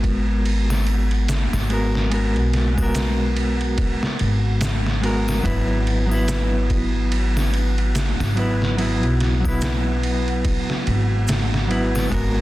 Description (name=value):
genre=trip hop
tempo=72 BPM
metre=4/4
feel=swing 59% on 16ths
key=unclear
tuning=A4 = 440 Hz
part: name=mellow electric guitar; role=accompaniment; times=0.0-12.4 s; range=F#3 to B4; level=-24 LUFS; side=equal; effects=tremolo, vintage 12-bit sampler grit, tape echo
part: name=upright bass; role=bass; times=0.0-12.4 s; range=G#1 to B1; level=-21 LUFS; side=equal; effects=none
part: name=trip hop sampler-style drum kit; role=drums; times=0.0-12.4 s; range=kick drum, ride cymbal, snare drum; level=-25 LUFS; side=equal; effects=none
part: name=wind-like tuned noise texture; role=texture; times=0.0-12.4 s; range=F#3 to F#4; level=-33 LUFS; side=equal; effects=built-in reverb
part: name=triangle and maracas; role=percussion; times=0.7-12.1 s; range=none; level=-40 LUFS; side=equal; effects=none
room=light reverb, digital ambience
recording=dense, heavily limited modern master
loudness=-18 LUFS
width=side -16 dB against mid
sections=0.0-12.4 A section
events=none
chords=0.0 G#m9; 5.5 Esus2/G#